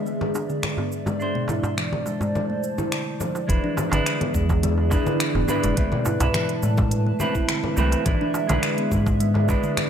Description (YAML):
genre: organic downtempo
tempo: 105 BPM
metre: 4/4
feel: straight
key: unclear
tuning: A4 = 439 Hz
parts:
  - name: semi-hollow electric guitar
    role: accompaniment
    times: 0.0-9.9 s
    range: G#3 to C5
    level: -28 LUFS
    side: right 2 dB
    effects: spring reverb, sidechain pumping, ping-pong delay
  - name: warbly tape-like pad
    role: sustained chords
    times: 0.0-9.9 s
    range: E3 to A5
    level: -28 LUFS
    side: right 1 dB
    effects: chorus, built-in reverb, phaser, sidechain pumping
  - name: kalimba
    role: arpeggios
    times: 0.1-9.8 s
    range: B2 to E4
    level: -27 LUFS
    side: left 1 dB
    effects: ping-pong delay
  - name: organic electronic drum kit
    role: drums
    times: 0.1-9.9 s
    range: congas, finger snaps, hi-hat, shaker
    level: -29 LUFS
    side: left 1 dB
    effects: none
  - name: darbuka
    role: percussion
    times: 0.2-9.6 s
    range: none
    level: -31 LUFS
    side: right 2 dB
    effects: none
  - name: round analog bass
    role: bass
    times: 3.5-9.5 s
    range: E1 to A2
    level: -22 LUFS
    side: equal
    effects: none
  - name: electronic kick drum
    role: drums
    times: 3.5-9.6 s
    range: none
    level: -24 LUFS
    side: equal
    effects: none
room: light reverb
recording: none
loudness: -20 LUFS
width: side -8 dB against mid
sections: 0.0-3.5 A section; 3.5-9.9 B section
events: none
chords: 0.0 E7; 1.2 F6 (rootless); 3.5 E7; 5.8 Amadd9; 8.1 E7/G#